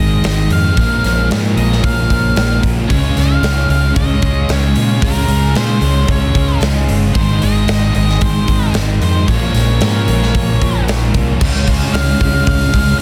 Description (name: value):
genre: rock, shoegaze and dream pop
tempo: 113 BPM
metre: 4/4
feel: straight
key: Db lydian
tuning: A4 = 441 Hz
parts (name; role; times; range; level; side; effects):
- octave-fuzz lead guitar; melody; 0.0-13.0 s; Bb4 to F5; -24 LUFS; equal; distortion, slapback echo
- chorused pulse-width pad; sustained chords; 0.0-13.0 s; Ab3 to C6; -30 LUFS; equal; none
- picked twelve-string acoustic guitar; arpeggios; 0.0-13.0 s; Eb3 to G4; -29 LUFS; equal; none
- biting overdriven guitar; riff; 0.0-13.0 s; Ab2 to Db4; -25 LUFS; equal; none
- direct-recorded clean electric guitar; riff; 0.0-13.0 s; Ab2 to F4; -31 LUFS; equal; none
- thick fuzz guitar; riff; 0.0-13.0 s; Ab2 to Db4; -22 LUFS; equal; distortion, analog chorus
- vintage muted fingered electric bass; bass; 0.0-12.9 s; G1 to Bb2; -18 LUFS; equal; none
- big rock drum kit; drums; 0.2-12.9 s; crash cymbal, hi-hat, kick drum, snare drum; -20 LUFS; equal; none
room: small room ambience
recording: dense, heavily limited modern master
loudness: -14 LUFS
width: mono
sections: 0.0-11.4 A section; 11.4-13.0 B section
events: none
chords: 0.0 Abmaj7; 0.8 Bbm7; 2.9 Dbmaj7; 7.2 Abmaj7; 9.3 Bbm7; 11.4 Dbmaj7